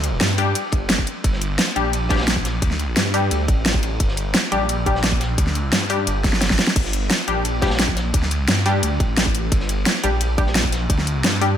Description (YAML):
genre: dark technical drum and bass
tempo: 174 BPM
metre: 4/4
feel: straight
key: G minor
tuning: A4 = 440 Hz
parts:
  - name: phased detuned saw bass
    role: bass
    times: 0.0-11.6 s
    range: G1 to G2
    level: -22 LUFS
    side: equal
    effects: phaser, overdrive
  - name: crunchy breakbeat drum kit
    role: drums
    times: 0.0-11.5 s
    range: ride cymbal, snare drum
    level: -30 LUFS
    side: equal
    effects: high-pass filter on cymbals, high-pass filter on snare, high-pass filter on room
  - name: dubstep drum kit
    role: drums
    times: 0.0-11.5 s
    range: crash cymbal, hi-hat, snare drum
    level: -21 LUFS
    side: equal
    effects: overdrive
  - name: filtered dub chord stab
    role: stabs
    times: 0.4-11.6 s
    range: G3 to G4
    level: -24 LUFS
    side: left 3 dB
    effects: chorus, ping-pong delay
  - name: electronic kick drum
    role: drums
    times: 0.7-11.0 s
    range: none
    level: -21 LUFS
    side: equal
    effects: none
room: light reverb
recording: none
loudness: -17 LUFS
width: side -10 dB against mid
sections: 0.0-11.6 A section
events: drum fill 6.2-6.8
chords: 0.0 Gm